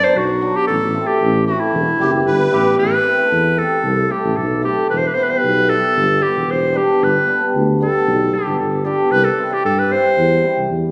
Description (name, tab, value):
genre	klezmer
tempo	114 BPM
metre	4/4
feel	straight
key	A minor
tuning	A4 = 440 Hz
part	warm clarinet	melody	0.0-10.7 s	E4 to C5	-19 LUFS	equal	none
part	cimbalom	accompaniment	0.0-10.9 s	F#3 to G4	-22 LUFS	equal	none
part	mellow tuba	bass	0.2-10.9 s	E1 to G2	-24 LUFS	equal	none
part	musette accordion	second line	2.0-2.8 s	G4 to B4	-24 LUFS	equal	none
room	wet recital hall reverb, RT60 1.3 s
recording	recorded in a church or concert hall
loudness	-16 LUFS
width	mono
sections	0.0-2.8 A section; 2.8-10.9 B section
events	none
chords	0.0 Bm; 0.7 Am; 1.7 Em; 2.8 Am; 4.9 Em; 7.0 G; 9.1 C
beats	0.16 | 0.68 1.21 1.74 2.27 | 2.79 3.32 3.85 4.38 | 4.91 5.43 5.96 6.49 | 7.01 7.54 8.07 8.59 | 9.12 9.64 10.17 10.70